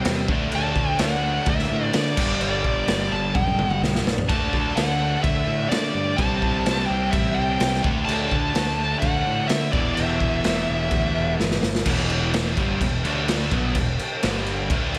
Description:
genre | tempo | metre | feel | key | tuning
hard rock | 127 BPM | 4/4 | straight | unclear | A4 = 438 Hz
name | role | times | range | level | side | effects
bluesy overdriven lead guitar | melody | 0.0-11.3 s | D5 to A5 | -28 LUFS | equal | distortion, slapback echo, digital delay
overdriven semi-hollow guitar | riff | 0.0-15.0 s | E2 to D4 | -29 LUFS | equal | slapback echo
tight distorted guitar | riff | 0.0-15.0 s | E2 to D4 | -33 LUFS | equal | distortion, slapback echo
raw garage drum kit | drums | 0.0-15.0 s | crash cymbal, kick drum, snare drum, toms | -26 LUFS | equal | none
modern bright picked electric bass | bass | 0.1-15.0 s | E1 to D3 | -31 LUFS | equal | none
room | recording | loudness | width
moderate scoring stage reverb, RT60 1.6 s | big arena sound | -22 LUFS | mono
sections
0.0-11.9 A section; 11.9-15.0 B section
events
drum fill 3.4-4.3, 11.4-11.9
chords
0.3 D; 2.2 G; 4.3 D; 6.2 C5; 7.8 D; 9.7 Em; 13.0 D5; 13.5 E5; 14.2 G5

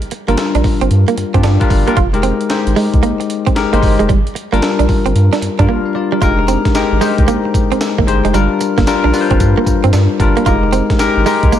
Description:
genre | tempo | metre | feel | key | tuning
R&B, new jack swing | 113 BPM | 4/4 | swing 65% on 16ths | F dorian | A4 = 441 Hz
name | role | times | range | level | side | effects
breakbeat sampler-style drum kit | drums | 0.0-11.6 s | hi-hat, kick drum, snare drum, tambourine | -17 LUFS | right 1 dB | vintage 12-bit sampler grit, gated reverb
direct-recorded clean electric guitar | riff | 0.1-11.6 s | G3 to F4 | -19 LUFS | right 9 dB | lush chorus
bell-like tine electric piano | accompaniment | 0.3-11.6 s | G3 to F5 | -15 LUFS | left 5 dB | lush chorus
round analog bass | bass | 0.3-11.5 s | F1 to G2 | -14 LUFS | right 1 dB | none
room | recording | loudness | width
digital ambience | none | -11 LUFS | side -10 dB against mid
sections
0.0-6.2 A section; 6.2-11.6 B section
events
break 5.7-6.2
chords
0.0 Gm7; 2.0 Fm11; 4.1 Gm7; 6.2 Fm11; 8.3 Gm7; 10.5 Fm11

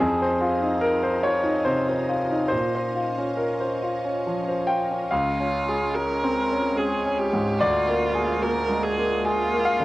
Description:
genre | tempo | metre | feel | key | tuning
neoclassical piano and strings | 71 BPM | 3/4 | uneven beats, rubato | unclear | A4 = 444 Hz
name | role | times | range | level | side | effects
clear grand piano | accompaniment | 0.0-9.8 s | Db2 to G5 | -22 LUFS | equal | cassette tape
soft additive organ-like pad | sustained chords | 0.0-9.8 s | Ab3 to Eb5 | -33 LUFS | right 1 dB | ensemble chorus, built-in reverb, cassette tape
clear viola | accompaniment | 5.1-9.8 s | F4 to Bb4 | -27 LUFS | right 2 dB | cassette tape
room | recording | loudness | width
light reverb | home recording on cassette | -21 LUFS | side -17 dB against mid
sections
0.0-5.1 A section; 5.1-9.8 B section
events
none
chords
0.0 Fm7; 2.5 Bbmadd9; 5.1 Db; 7.6 Bb7/D

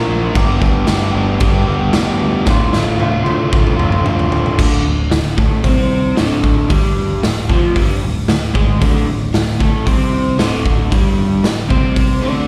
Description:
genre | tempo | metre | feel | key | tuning
garage rock duo or trio | 114 BPM | 4/4 | straight | D minor | A4 = 436 Hz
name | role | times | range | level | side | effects
overdriven electric guitar | riff | 0.0-12.5 s | D2 to Bb4 | -20 LUFS | equal | slapback echo
picked electric bass | bass | 0.0-12.5 s | D1 to D2 | -22 LUFS | equal | overdrive
raw garage drum kit | drums | 0.4-12.1 s | crash cymbal, hi-hat, kick drum, snare drum, toms | -18 LUFS | equal | none
room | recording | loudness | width
light reverb | live gig heard through the venue's PA, recital hall reverb | -15 LUFS | mono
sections
0.0-4.6 A section; 4.6-12.5 B section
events
drum fill 2.5-4.6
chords
0.4 G; 2.5 Dm; 4.6 D5

